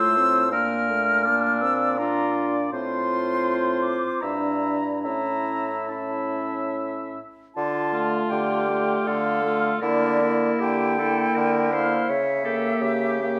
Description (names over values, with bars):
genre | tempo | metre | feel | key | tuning
classical, slow romantic movement for wind quintet | 69-84 BPM | 3/4 | rubato | D minor | A4 = 439 Hz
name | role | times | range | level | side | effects
concert flute | melody | 0.0-13.4 s | D5 to F6 | -28 LUFS | equal | none
warm oboe | second line | 0.0-13.4 s | E4 to E5 | -32 LUFS | equal | none
clear clarinet | accompaniment | 0.0-13.4 s | D4 to C#5 | -32 LUFS | equal | none
mellow French horn | accompaniment | 0.0-13.4 s | A3 to D4 | -31 LUFS | equal | none
clear bassoon | bass | 0.0-13.4 s | G2 to D3 | -30 LUFS | equal | none
room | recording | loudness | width
wet recital hall reverb, RT60 1.6 s | none | -23 LUFS | mono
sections
0.0-7.6 A section; 7.6-13.4 B section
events
none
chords
0.0 F; 0.5 Bb; 2.7 F/A; 4.2 Em7b5/G; 5.1 A; 7.6 Dm; 9.8 Em7b5/D; 12.1 C#dim7